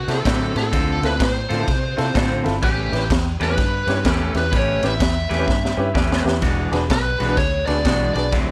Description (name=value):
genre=electric blues shuffle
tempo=126 BPM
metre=4/4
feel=swing 63% on 8ths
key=unclear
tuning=A4 = 440 Hz
part: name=lead guitar through a small cranked amp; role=melody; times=0.0-8.3 s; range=G4 to E5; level=-27 LUFS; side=equal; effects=overdrive
part: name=vintage muted fingered electric bass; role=bass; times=0.0-8.5 s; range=E1 to C3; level=-26 LUFS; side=equal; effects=none
part: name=warm concert grand piano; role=accompaniment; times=0.1-8.2 s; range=C4 to B5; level=-28 LUFS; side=equal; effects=none
part: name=electric guitar at the edge of break-up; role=riff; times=0.1-8.5 s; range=D3 to B4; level=-28 LUFS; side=equal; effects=none
part: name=raw garage drum kit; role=drums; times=0.1-8.5 s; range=kick drum, ride cymbal, snare drum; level=-24 LUFS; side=equal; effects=none
room=little or no reverb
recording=none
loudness=-20 LUFS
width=mono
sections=0.0-8.5 A section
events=grand piano fill 1.7-2.6, 5.7-6.4; drum fill 5.5-6.4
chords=0.0 D9; 0.7 Dm7; 2.6 A9; 6.4 E9